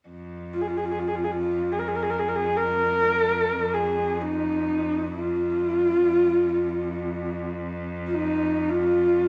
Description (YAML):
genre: mongolian traditional, Mongolian folk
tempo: free time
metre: none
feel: none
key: F yu mode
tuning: A4 = 440 Hz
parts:
  - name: clear cello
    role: drone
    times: 0.1-9.3 s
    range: F2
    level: -34 LUFS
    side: equal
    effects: none
  - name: dark horsehead fiddle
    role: melody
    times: 0.5-9.3 s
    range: Eb4 to Bb4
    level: -25 LUFS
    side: equal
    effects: none
room: wet studio reverb, RT60 0.7 s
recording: none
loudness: -25 LUFS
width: mono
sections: 0.1-9.3 A section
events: none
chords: none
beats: free time